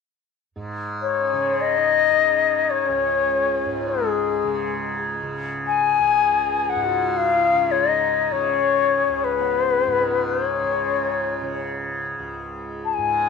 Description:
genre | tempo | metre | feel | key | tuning
indian classical | free time | none | none | unclear | A4 = 438 Hz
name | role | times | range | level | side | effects
tanpura | drone | 0.6-13.3 s | C#2 to C#3 | -28 LUFS | right 2 dB | none
bright bansuri | melody | 1.0-13.3 s | G#4 to A5 | -19 LUFS | left 8 dB | none
dark sarangi | second line | 1.2-13.3 s | G#3 to G#4 | -30 LUFS | right 12 dB | none
room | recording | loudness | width
moderate echo chamber reverb, RT60 1.8 s, studio reverb | 1960s-style stereo with parts hard left and right | -19 LUFS | side -5 dB against mid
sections
0.6-13.3 A section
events
none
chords
none

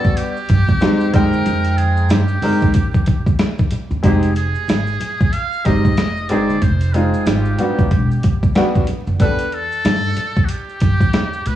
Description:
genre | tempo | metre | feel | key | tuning
hip hop, jazz-hop | 93 BPM | 4/4 | swing 59% on 16ths | unclear | A4 = 439 Hz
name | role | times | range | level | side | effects
trumpet with metal mute | melody | 0.0-11.6 s | F#4 to F5 | -24 LUFS | right 1 dB | tape echo
bright upright piano | accompaniment | 0.0-9.5 s | G3 to G5 | -19 LUFS | left 1 dB | none
boom bap sampler-style drum kit | drums | 0.0-11.6 s | hi-hat, kick drum, snare drum | -17 LUFS | equal | none
maracas and congas | percussion | 0.0-11.6 s | none | -29 LUFS | right 5 dB | none
upright bass | bass | 0.5-11.6 s | E1 to G2 | -19 LUFS | equal | tube saturation
room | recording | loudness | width
studio ambience | worn, warbling old tape, cassette tape, vinyl crackle, warbly pitch drift | -14 LUFS | side -12 dB against mid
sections
0.0-11.6 A section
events
none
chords
0.0 Em9; 1.1 Fm9; 7.9 Em9

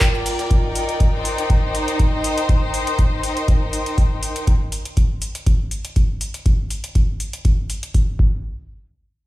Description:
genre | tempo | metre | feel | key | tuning
acid house | 121 BPM | 4/4 | swing 54% on 16ths | unclear | A4 = 440 Hz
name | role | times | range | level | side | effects
dark analog pad | sustained chords | 0.0-0.5 s | G3 to Bb4 | -45 LUFS | right 2 dB | none
booming analog drum machine | drums | 0.0-8.1 s | handclaps, hi-hat, shaker | -28 LUFS | equal | none
dusty soul sampler-style drum kit | drums | 0.0-0.5 s | hi-hat, snare drum, tambourine | -32 LUFS | right 1 dB | none
electronic kick drum | drums | 0.0-8.3 s | none | -18 LUFS | equal | none
bright studio string section | texture | 0.0-4.5 s | Eb4 to G5 | -23 LUFS | left 1 dB | sidechain pumping
room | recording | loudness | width
light reverb | played on a big sound system in a bare room, large studio reverb | -17 LUFS | side -17 dB against mid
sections
0.0-8.4 A section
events
none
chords
0.0 Gm7; 0.5 Cm7; 8.2 N.C.

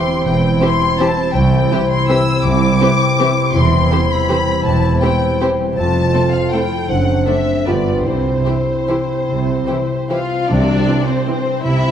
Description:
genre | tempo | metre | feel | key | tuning
classical, orchestral ballroom waltz | 141-175 BPM | 3/4 | rubato | C major | A4 = 440 Hz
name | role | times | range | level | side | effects
rich studio violin section | melody | 0.0-11.9 s | C5 to E6 | -22 LUFS | left 5 dB | none
mellow clarinet | second line | 0.0-10.3 s | D4 to F4 | -24 LUFS | right 1 dB | none
warm bassoon | accompaniment | 0.0-10.3 s | B3 to C4 | -21 LUFS | right 1 dB | none
concert harp | arpeggios | 0.0-11.9 s | E2 to A4 | -22 LUFS | left 6 dB | none
warm studio cello section | bass | 0.2-11.9 s | C2 to C3 | -21 LUFS | right 2 dB | none
warm studio double bass section | bass | 0.2-11.9 s | E1 to C2 | -20 LUFS | right 3 dB | none
dark studio violin section | second line | 0.6-11.9 s | C4 to C5 | -23 LUFS | left 2 dB | none
dark studio viola section | accompaniment | 0.6-11.4 s | E3 to E4 | -25 LUFS | right 2 dB | none
timpani | percussion | 10.5-11.0 s | C3 | -21 LUFS | left 2 dB | none
room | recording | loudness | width
wet scoring stage reverb, RT60 1.9 s | dark, warm production | -13 LUFS | side -9 dB against mid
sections
0.0-10.5 A section; 10.5-11.9 A section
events
none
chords
0.0 C/E; 1.3 C; 3.5 C/E; 5.8 F; 6.9 D7/F#; 7.7 G7; 8.1 C

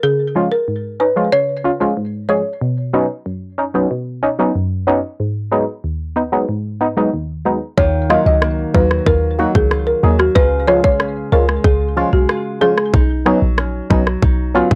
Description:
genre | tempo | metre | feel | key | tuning
dancehall | 93 BPM | 4/4 | straight | Eb minor | A4 = 445 Hz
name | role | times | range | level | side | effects
folk marimba with medium mallets | melody | 0.0-2.4, 7.8-12.8 s | Gb4 to Eb5 | -19 LUFS | equal | tape echo
wavetable chord stab | accompaniment | 0.0-14.7 s | Eb2 to Ab4 | -19 LUFS | equal | none
nylon-string guitar | arpeggios | 7.8-14.8 s | Db3 to F4 | -25 LUFS | equal | none
short 808-style bass | bass | 7.8-14.8 s | Bb1 to Eb2 | -19 LUFS | equal | none
island pop drum kit | drums | 7.8-14.8 s | kick drum, rim click | -18 LUFS | equal | overdrive
room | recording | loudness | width
light reverb | dry, gritty hardware recording | -16 LUFS | mono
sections
0.0-7.8 A section; 7.8-14.8 B section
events
none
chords
0.0 Db; 2.6 Badd9; 5.2 Abm7; 7.8 Ebmadd9; 10.4 Db; 12.9 Badd9

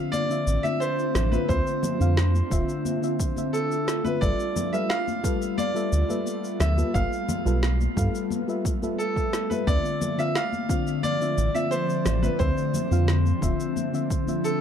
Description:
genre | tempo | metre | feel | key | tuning
sunset chillout | 88 BPM | 4/4 | straight | D dorian | A4 = 440 Hz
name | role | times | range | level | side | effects
bright concert grand piano | melody | 0.0-14.6 s | A4 to F5 | -29 LUFS | right 2 dB | digital delay
mellow FM electric piano | accompaniment | 0.0-14.6 s | D3 to F5 | -29 LUFS | moving between left 6 dB and right 3 dB | chorus, auto-pan
ethereal airy pad | sustained chords | 0.0-14.6 s | D3 to D5 | -31 LUFS | left 1 dB | ensemble chorus, built-in reverb
electronic shaker and snare drum | drums | 0.1-14.6 s | none | -33 LUFS | equal | none
congas | percussion | 0.1-14.4 s | none | -34 LUFS | left 4 dB | none
round analog bass | bass | 0.5-13.5 s | D1 to G2 | -23 LUFS | equal | none
electronic kick drum | drums | 1.5-14.2 s | none | -27 LUFS | equal | none
room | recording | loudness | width
light reverb, digital ambience | dark, warm production | -22 LUFS | side -8 dB against mid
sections
0.0-14.6 A section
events
none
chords
0.0 Dm9; 4.2 G13; 9.7 Dm9

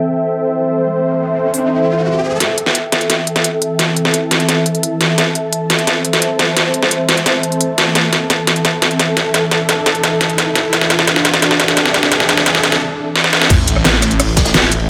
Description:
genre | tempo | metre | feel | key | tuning
dark technical drum and bass | 173 BPM | 4/4 | straight | A minor | A4 = 438 Hz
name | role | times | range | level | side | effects
sweeping resonant pad | sustained chords | 0.0-13.5 s | E3 to C5 | -21 LUFS | equal | chorus, sidechain pumping
riser and sub drop | sound effects | 0.6-14.9 s | none | -26 LUFS | equal | none
ethereal airy pad | texture | 0.0-14.9 s | A4 to A5 | -23 LUFS | equal | ensemble chorus, built-in reverb, sidechain pumping
dubstep drum kit | drums | 1.5-14.8 s | crash cymbal, hi-hat, rim click, shaker, snare drum | -15 LUFS | equal | high-pass filter on hats, high-pass filter on snare, high-pass filter on cymbals, high-pass filter on perc
phased detuned saw bass | bass | 13.5-14.9 s | A1 | -18 LUFS | equal | phaser, sidechain pumping
crunchy breakbeat drum kit | drums | 13.5-14.9 s | hi-hat, ride cymbal, snare drum | -23 LUFS | equal | high-pass filter on cymbals, high-pass filter on hats, high-pass filter on snare, high-pass filter on room
electronic kick drum | drums | 13.5-14.4 s | none | -16 LUFS | equal | none
room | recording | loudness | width
moderate lush hall reverb, RT60 2.0 s, small room ambience | none | -14 LUFS | mono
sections
0.0-2.4 A section; 2.4-13.5 B section; 13.5-14.9 C section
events
filter sweep on analog synth pad 0.0-2.4, 2.4-13.5; riser 0.6-2.4, 2.4-12.8; build-up 2.4-13.5; drum fill 2.4-12.8, 13.2-13.5; break 12.8-13.5; drop 13.5-14.9; impact 13.5-14.9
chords
0.0 Am; 13.5 A5

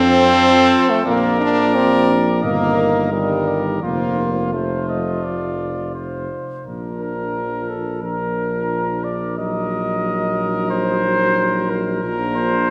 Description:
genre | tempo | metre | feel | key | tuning
classical, brass quintet | 84-92 BPM | 4/4 | rubato | Bb major | A4 = 444 Hz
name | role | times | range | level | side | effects
dark trumpet | melody | 0.0-12.7 s | A4 to Eb5 | -26 LUFS | equal | none
clear trumpet | second line | 0.0-12.7 s | F4 to Bb4 | -27 LUFS | equal | none
clear French horn | accompaniment | 0.0-12.7 s | G3 to Eb4 | -22 LUFS | equal | none
mellow trombone | accompaniment | 0.0-12.7 s | Eb3 to Gb3 | -28 LUFS | equal | none
mellow tuba | bass | 0.0-12.7 s | F1 to F2 | -26 LUFS | equal | none
room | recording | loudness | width
wet church reverb, RT60 2.7 s | none | -19 LUFS | mono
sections
0.0-6.7 A section; 6.7-12.7 B section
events
none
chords
0.0 F; 1.1 Bb; 2.4 Eb/G; 3.8 F; 6.7 Bb; 9.4 Ebm/Bb; 12.0 Bb

